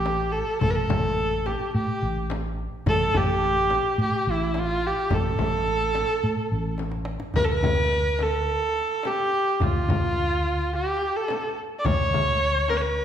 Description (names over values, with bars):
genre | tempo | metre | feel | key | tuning
Persian modal ensemble | 107 BPM | 4/4 | straight | D avaz esfahan from 7.4 s | A4 = 440 Hz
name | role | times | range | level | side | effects
clear kamancheh | melody | 0.0-13.0 s | E4 to D5 | -24 LUFS | right 1 dB | analog delay
woody fretless electric bass | bass | 0.0-13.0 s | A1 to A2 | -27 LUFS | equal | none
frame drum | percussion | 0.1-12.8 s | none | -32 LUFS | left 3 dB | none
tombak | percussion | 0.1-13.0 s | none | -30 LUFS | equal | none
room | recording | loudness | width
wet recital hall reverb, RT60 1.4 s | heard from further back in the room | -22 LUFS | side -9 dB against mid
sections
0.0-7.4 A section; 7.4-13.0 B section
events
drum fill 6.8-7.4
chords
none